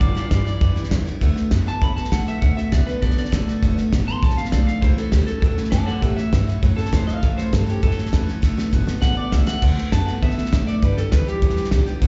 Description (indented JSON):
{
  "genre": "rockabilly",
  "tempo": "200 BPM",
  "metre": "4/4",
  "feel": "straight",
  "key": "D major",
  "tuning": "A4 = 441 Hz",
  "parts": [
    { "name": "electric guitar through a small old amp", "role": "melody", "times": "0.0-11.9 s", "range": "F4 to C6", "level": "-31 LUFS", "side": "equal", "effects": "spring reverb, plate reverb, slapback echo, tape echo" },
    { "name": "picked steel-string acoustic guitar", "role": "accompaniment", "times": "0.0-12.1 s", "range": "G2 to G4", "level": "-33 LUFS", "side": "equal", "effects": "plate reverb, slapback echo" },
    { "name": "electric guitar through a small old amp", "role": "riff", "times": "0.0-12.1 s", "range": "G2 to B3", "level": "-29 LUFS", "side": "equal", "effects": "slapback echo" },
    { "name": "upright bass", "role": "bass", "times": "0.0-12.1 s", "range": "F#1 to B2", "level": "-24 LUFS", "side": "equal", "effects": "none" },
    { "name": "cloth-damped thuddy drum kit", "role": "drums", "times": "0.0-12.1 s", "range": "crash cymbal, hi-hat, kick drum, snare drum", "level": "-24 LUFS", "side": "equal", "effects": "none" }
  ],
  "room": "little or no reverb",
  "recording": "live gig heard through the venue's PA, club reverb, nothing above 7.7 kHz",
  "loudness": "-20 LUFS",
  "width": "mono",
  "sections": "0.0-9.6 A section; 9.6-12.1 B section",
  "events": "drum fill 8.4-9.6; clean electric guitar solo 9.6-12.1",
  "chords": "0.0 G6; 1.2 D6; 4.8 A6; 8.4 D6; 10.8 G6"
}